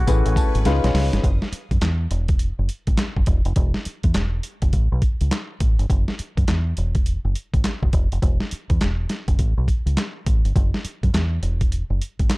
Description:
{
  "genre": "R&B, new jack swing",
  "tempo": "103 BPM",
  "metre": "4/4",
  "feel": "swing 63% on 16ths",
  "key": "unclear",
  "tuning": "A4 = 440 Hz",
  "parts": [
    { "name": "trumpet with plunger mute", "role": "melody", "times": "0.0-0.7 s", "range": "F#4", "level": "-33 LUFS", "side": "left 1 dB", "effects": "ping-pong delay" },
    { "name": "warm baby grand piano", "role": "accompaniment", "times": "0.0-1.3 s", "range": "G#3 to A5", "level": "-24 LUFS", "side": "left 4 dB", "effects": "none" },
    { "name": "phased analog pad", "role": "sustained chords", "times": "0.0-1.2 s", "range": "B4 to D#6", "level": "-36 LUFS", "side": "right 1 dB", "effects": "phaser, chorus" },
    { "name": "deep dub fingered electric bass", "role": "bass", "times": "0.0-12.3 s", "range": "E1 to F#2", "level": "-21 LUFS", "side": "equal", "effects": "none" },
    { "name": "boom bap sampler-style drum kit", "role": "drums", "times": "0.1-12.4 s", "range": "handclaps, hi-hat, kick drum, snare drum, tambourine", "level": "-21 LUFS", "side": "equal", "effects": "none" }
  ],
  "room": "little or no reverb",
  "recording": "dark, warm production",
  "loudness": "-19 LUFS",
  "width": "side -23 dB against mid",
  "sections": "0.0-1.2 A section; 1.2-12.4 B section",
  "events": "grand piano fill 0.1-1.2; drum fill 0.7-1.2",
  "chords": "0.1 Amaj9; 0.7 C#9; 1.2 Esus2/F#; 2.1 Esus2; 3.3 N.C.; 5.9 Esus2/F#; 6.8 Esus2; 7.9 N.C.; 9.4 A; 10.6 Esus2/F#; 11.4 N.C.",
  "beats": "0.07 0.65 | 1.23 1.82 2.40 2.98 | 3.56 4.15 4.73 5.31 | 5.89 6.48 7.06 7.64 | 8.22 8.81 9.39 9.97 | 10.55 11.14 11.72 12.30"
}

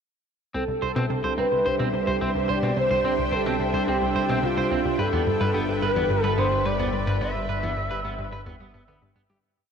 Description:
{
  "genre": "ambient, sequencer-driven space music",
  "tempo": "108 BPM",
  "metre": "4/4",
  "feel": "straight",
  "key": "C major",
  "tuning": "A4 = 439 Hz",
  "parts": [
    { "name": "string machine, full ensemble", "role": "sustained chords", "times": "0.8-9.4 s", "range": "G3 to E5", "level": "-28 LUFS", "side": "right 1 dB", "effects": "ensemble chorus" },
    { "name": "semi-hollow electric guitar", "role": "arpeggios", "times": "0.5-9.4 s", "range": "B3 to C5", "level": "-30 LUFS", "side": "right 3 dB", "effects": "auto-pan, tape echo" },
    { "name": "analog pluck", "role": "riff", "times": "0.5-9.4 s", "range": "C2 to D3", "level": "-29 LUFS", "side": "left 1 dB", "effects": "chorus, tape echo" },
    { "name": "fat analog bass", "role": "bass", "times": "0.5-9.4 s", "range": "G1 to C2", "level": "-34 LUFS", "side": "left 1 dB", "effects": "none" },
    { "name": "bubbling stepped-filter texture", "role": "texture", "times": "1.2-9.4 s", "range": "G5", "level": "-37 LUFS", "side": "left 3 dB", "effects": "chorus, built-in reverb" },
    { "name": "expressive portamento lead", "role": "melody", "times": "0.6-8.8 s", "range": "F4 to E5", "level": "-26 LUFS", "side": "equal", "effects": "lush chorus, cassette tape, tape echo" }
  ],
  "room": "wet huge ambient reverb, RT60 7.4 s",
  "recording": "none",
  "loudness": "-22 LUFS",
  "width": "side -7 dB against mid",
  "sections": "0.5-9.4 A section",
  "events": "fade-in on analog synth bass 0.5-9.4; fade-out 6.5-9.4",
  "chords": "0.5 Cadd9; 5.0 G6",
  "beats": "| 0.55 1.10 1.66 2.21 | 2.77 3.32 3.88 4.43 | 4.99 5.55 6.10 6.66 | 7.21 7.77 8.32 8.88"
}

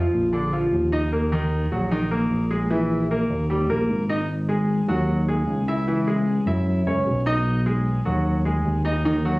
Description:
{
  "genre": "Afro-Cuban jazz",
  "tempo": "151 BPM",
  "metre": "4/4",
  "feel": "straight",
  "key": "G# minor from 4.3 s",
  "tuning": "A4 = 436 Hz",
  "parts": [
    { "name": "clear baby grand piano", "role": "accompaniment", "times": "0.0-9.4 s", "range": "D3 to E5", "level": "-23 LUFS", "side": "equal", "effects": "none" },
    { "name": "smooth synth bass", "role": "bass", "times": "0.0-9.4 s", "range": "Ab1 to F#2", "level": "-23 LUFS", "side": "equal", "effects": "none" }
  ],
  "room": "light reverb",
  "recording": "recorded on a phone in the room, club reverb, compression",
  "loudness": "-20 LUFS",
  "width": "side -22 dB against mid",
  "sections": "0.0-4.3 A section; 4.3-9.4 B section",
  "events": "none",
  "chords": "0.3 Bb; 1.1 Ebm; 2.7 Bbsus4; 3.5 Eb; 4.3 G#5; 5.9 C#m; 6.7 F#5; 7.5 B6",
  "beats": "0.32 0.72 | 1.12 1.51 1.91 2.31 | 2.70 3.10 3.49 3.89 | 4.29 4.68 5.08 5.48 | 5.87 6.27 6.67 7.06 | 7.46 7.86 8.25 8.65 | 9.04"
}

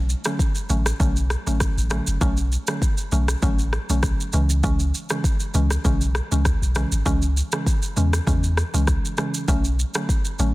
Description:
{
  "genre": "afrobeats",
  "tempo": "99 BPM",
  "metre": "4/4",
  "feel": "swing 55% on 16ths",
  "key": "B dorian",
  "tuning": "A4 = 441 Hz",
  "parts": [
    { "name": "punchy sub bass", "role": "bass", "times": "0.0-10.5 s", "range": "F#1 to E2", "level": "-21 LUFS", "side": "equal", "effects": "none" },
    { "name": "afro-pop drum kit", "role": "drums", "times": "0.1-10.5 s", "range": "kick drum, rim click, shaker", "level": "-23 LUFS", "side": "equal", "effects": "soft clipping on snare" },
    { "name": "mallet-like synth pluck", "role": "accompaniment", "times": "0.3-10.5 s", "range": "C#3 to C#4", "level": "-26 LUFS", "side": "right 1 dB", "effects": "chorus" }
  ],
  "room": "digital ambience",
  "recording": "dense, heavily limited modern master",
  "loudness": "-19 LUFS",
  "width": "side -19 dB against mid",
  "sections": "0.0-10.5 A section",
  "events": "none",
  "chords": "0.0 Bm7; 4.3 C#m; 9.5 Bm7",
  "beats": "0.39 1.00 1.61 | 2.21 2.82 3.42 4.03 | 4.64 5.24 5.85 6.45 | 7.06 7.67 8.27 8.88 | 9.48 10.09"
}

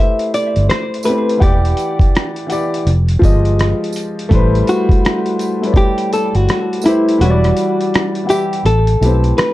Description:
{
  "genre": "lo-fi hip hop",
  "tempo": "83 BPM",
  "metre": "4/4",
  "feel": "swing 63% on 16ths",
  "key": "A dorian",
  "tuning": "A4 = 438 Hz",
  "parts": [
    { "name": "hollow-body jazz guitar", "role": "melody", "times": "0.0-9.5 s", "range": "E4 to E5", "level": "-17 LUFS", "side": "left 1 dB", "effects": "low-pass filter, tape echo, plate reverb" },
    { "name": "warm upright piano", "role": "accompaniment", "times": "0.0-9.5 s", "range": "E3 to F#5", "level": "-18 LUFS", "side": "left 1 dB", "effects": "cassette tape, low-pass filter, plate reverb" },
    { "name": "dusty soul sampler-style drum kit", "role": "drums", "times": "0.2-9.5 s", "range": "hi-hat, kick drum, rim click", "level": "-16 LUFS", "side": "equal", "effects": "none" },
    { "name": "tambourine", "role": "percussion", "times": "0.3-9.2 s", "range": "none", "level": "-35 LUFS", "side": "right 8 dB", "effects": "none" },
    { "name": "vintage muted fingered electric bass", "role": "bass", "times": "0.6-9.3 s", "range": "E1 to B1", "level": "-13 LUFS", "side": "equal", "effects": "none" }
  ],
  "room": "light reverb",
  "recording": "dark, warm production",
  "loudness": "-12 LUFS",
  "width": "side -16 dB against mid",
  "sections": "0.0-9.5 A section",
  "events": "kick muted 7.2-9.5",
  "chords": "0.0 Am9; 1.4 Em9; 2.9 Fm9; 4.3 Am9; 7.2 Em9; 8.6 Am9",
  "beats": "0.69 | 1.42 2.14 2.86 3.58 | 4.31 5.03 5.75 6.48 | 7.20 7.92 8.64 9.37"
}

